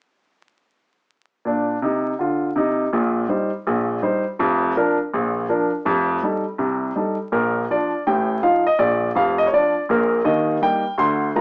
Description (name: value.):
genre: jazz, stride piano.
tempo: 164 BPM.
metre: 4/4.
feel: swing 62% on 8ths.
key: Bb major.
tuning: A4 = 440 Hz.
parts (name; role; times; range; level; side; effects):
clear baby grand piano; solo; 1.5-11.4 s; F1 to C6; -20 LUFS; equal; none.
room: wet studio reverb, RT60 0.5 s.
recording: home recording on cassette, vinyl crackle, small speaker sound.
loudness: -21 LUFS.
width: mono.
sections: 1.5-7.3 A section; 7.3-11.4 B section.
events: none.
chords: 1.5 Bb; 2.9 Cm7/Bb; 4.4 Bb/F; 5.9 F9; 7.3 Bb; 8.1 F7/A; 8.8 Bb; 10.3 Eb.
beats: | 1.45 1.82 2.19 2.56 | 2.92 3.29 3.66 4.03 | 4.39 4.76 5.13 5.49 | 5.86 6.23 6.59 6.96 | 7.33 7.69 8.06 8.43 | 8.79 9.16 9.53 9.89 | 10.26 10.62 10.99 11.36.